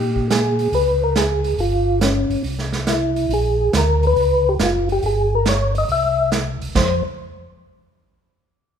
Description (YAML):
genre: soul jazz organ trio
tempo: 139 BPM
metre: 4/4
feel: swing 68% on 8ths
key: F minor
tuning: A4 = 440 Hz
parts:
  - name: percussive tonewheel organ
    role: melody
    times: 0.0-7.0 s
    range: Db4 to E5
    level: -19 LUFS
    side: left 2 dB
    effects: slow rotary speaker, chorus vibrato
  - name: mellow tonewheel organ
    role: bass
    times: 0.0-7.0 s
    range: F#1 to Bb2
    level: -21 LUFS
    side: equal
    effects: chorus vibrato, slow rotary speaker
  - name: vintage drum kit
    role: drums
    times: 0.2-6.9 s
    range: crash cymbal, hi-hat, kick drum, snare drum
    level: -23 LUFS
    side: right 4 dB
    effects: none
room: moderate recital hall reverb, RT60 1.5 s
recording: recorded in a church or concert hall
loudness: -16 LUFS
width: side -8 dB against mid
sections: 0.0-6.8 A section; 6.8-8.5 B section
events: none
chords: 0.0 Gm/Bb; 0.7 Db5; 1.6 Fsus2/G; 2.4 C; 3.3 Bb7; 4.2 Gmaj7#11 (rootless); 5.0 G(b5, no3); 5.9 C; 6.8 F5